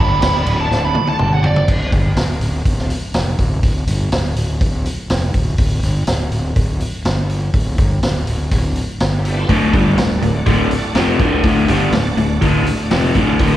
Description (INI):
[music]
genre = blues rock power trio and southern rock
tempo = 123 BPM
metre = 4/4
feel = straight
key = D mixolydian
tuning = A4 = 440 Hz
[part]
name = smooth overdriven lead guitar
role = second line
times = 0.0-1.7 s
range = D5 to B5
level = -19 LUFS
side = right 3 dB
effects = slapback echo
[part]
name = bright tonewheel organ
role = sustained chords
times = 0.0-1.7, 9.2-13.6 s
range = G3 to Eb5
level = -26 LUFS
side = right 3 dB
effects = slow rotary speaker, chorus vibrato
[part]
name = fuzz fingered electric bass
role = bass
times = 0.0-13.6 s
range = D1 to G1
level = -18 LUFS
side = equal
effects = overdrive
[part]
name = vintage drum kit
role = drums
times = 0.2-13.5 s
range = crash cymbal, hi-hat, kick drum, snare drum, toms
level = -19 LUFS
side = equal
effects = none
[part]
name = crunchy overdriven guitar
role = riff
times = 9.5-13.6 s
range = D2 to G3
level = -15 LUFS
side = left 1 dB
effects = slapback echo
[sound]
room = light reverb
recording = live gig heard through the venue's PA, recital hall reverb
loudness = -14 LUFS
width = side -13 dB against mid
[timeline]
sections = 0.0-1.7 A section; 1.7-13.6 B section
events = lead electric guitar solo 0.0-1.7; drum fill 0.7-1.7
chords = 0.0 D; 1.2 G5; 1.7 Dsus4; 7.1 N.C.; 7.5 Dsus4; 9.0 N.C.; 9.5 D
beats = 0.23 0.71 1.20 | 1.69 2.17 2.66 3.15 | 3.64 4.12 4.61 5.10 | 5.59 6.08 6.57 7.05 | 7.54 8.03 8.52 9.01 | 9.50 9.98 10.47 10.96 | 11.45 11.94 12.42 12.91 | 13.40